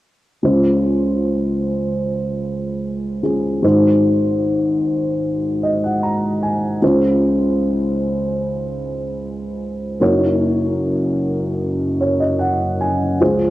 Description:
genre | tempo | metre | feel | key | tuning
folk | 75 BPM | 4/4 | straight | Db major | A4 = 440 Hz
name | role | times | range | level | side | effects
dark upright piano | melody | 0.4-13.5 s | Gb1 to Bb5 | -16 LUFS | equal | cassette tape
room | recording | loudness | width
light reverb, studio reverb | home recording on cassette | -16 LUFS | side -16 dB against mid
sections
0.4-13.2 A section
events
upright piano fill 5.2-6.8, 11.6-13.2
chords
0.4 Dbmaj7; 3.6 Ab7; 6.8 Dbmaj7; 10.0 Gb6

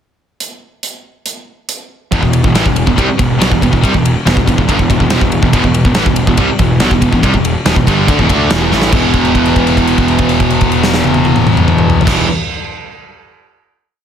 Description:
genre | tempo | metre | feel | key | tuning
heavy metal | 141 BPM | 4/4 | straight | E minor | A4 = 440 Hz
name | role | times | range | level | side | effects
big rock drum kit | drums | 0.4-12.2 s | crash cymbal, hi-hat, kick drum, ride cymbal, snare drum, toms | -14 LUFS | equal | none
fuzz guitar | riff | 2.1-12.3 s | E2 to D4 | -17 LUFS | equal | distortion
sludgy distorted guitar | riff | 2.1-12.3 s | E2 to D4 | -16 LUFS | right 9 dB | overdrive
tight distorted guitar | riff | 2.1-12.3 s | E2 to D4 | -17 LUFS | left 10 dB | distortion
fuzz picked electric bass | bass | 2.1-12.2 s | E1 to D2 | -17 LUFS | equal | overdrive
room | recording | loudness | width
light reverb | dense, heavily limited modern master | -9 LUFS | side -8 dB against mid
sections
0.4-2.1 pickup bar; 2.1-8.9 riff; 8.9-12.3 final chord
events
drum fill 8.7; held note 8.9-12.1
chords
0.4 N.C.; 2.1 Em; 8.9 E5

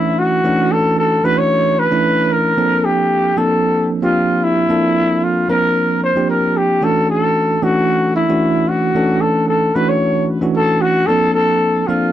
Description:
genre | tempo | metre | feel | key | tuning
jazz | 113 BPM | 4/4 | straight | unclear | A4 = 442 Hz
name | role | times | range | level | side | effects
growling trumpet | melody | 0.0-12.1 s | E4 to C#5 | -15 LUFS | left 1 dB | none
bell-like tine electric piano | accompaniment | 0.0-12.1 s | E3 to Bb4 | -17 LUFS | right 1 dB | medium stereo tremolo
room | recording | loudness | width
light reverb | dry, close 1970s-style studio recording | -13 LUFS | side -12 dB against mid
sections
0.0-12.1 A section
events
none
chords
0.0 Dmaj9; 2.6 Bbmaj9; 6.8 Dmaj9; 11.1 Bbmaj9

